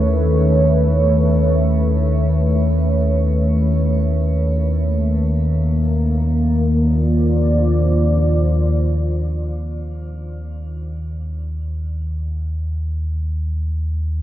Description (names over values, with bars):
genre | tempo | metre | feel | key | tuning
dark ambient drone | free time | none | none | unclear | A4 = 440 Hz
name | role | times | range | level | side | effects
deep dark ambient pad | sustained chords | 0.0-9.3 s | Eb3 to E5 | -19 LUFS | equal | chorus, built-in reverb, shimmer reverb
deep rumbling drone | drone | 0.0-14.2 s | Eb2 to Eb3 | -18 LUFS | equal | built-in reverb
room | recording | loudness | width
wet cathedral reverb, RT60 7.0 s | worn, warbling old tape, cassette tape, warbly pitch drift | -16 LUFS | side -13 dB against mid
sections
0.0-9.3 A section; 9.3-14.2 B section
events
none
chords
0.0 Aadd9/Eb; 4.6 Bb; 9.3 N.C.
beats
free time